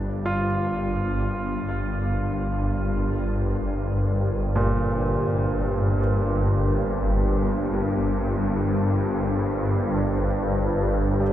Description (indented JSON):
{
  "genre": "dark ambient drone",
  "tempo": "free time",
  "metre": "none",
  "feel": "none",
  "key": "G minor",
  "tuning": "A4 = 440 Hz",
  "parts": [
    { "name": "dark analog pad", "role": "sustained chords", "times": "0.1-11.3 s", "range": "D4 to C5", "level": "-32 LUFS", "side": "right 1 dB", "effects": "chorus, phaser" },
    { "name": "clear baby grand piano", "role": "arpeggios", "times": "0.0-11.3 s", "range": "Bb2 to F4", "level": "-31 LUFS", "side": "right 2 dB", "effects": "diffuse ambient delay" },
    { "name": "swarming drone", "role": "drone", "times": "0.0-11.3 s", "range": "G1 to G2", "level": "-23 LUFS", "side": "equal", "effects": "built-in reverb" }
  ],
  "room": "wet huge ambient reverb, RT60 8.2 s",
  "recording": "none",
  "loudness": "-22 LUFS",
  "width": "side -12 dB against mid",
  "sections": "0.0-11.3 A section",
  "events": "fade-in on analog synth pad 0.0-11.3",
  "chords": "0.0 Gm",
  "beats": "free time"
}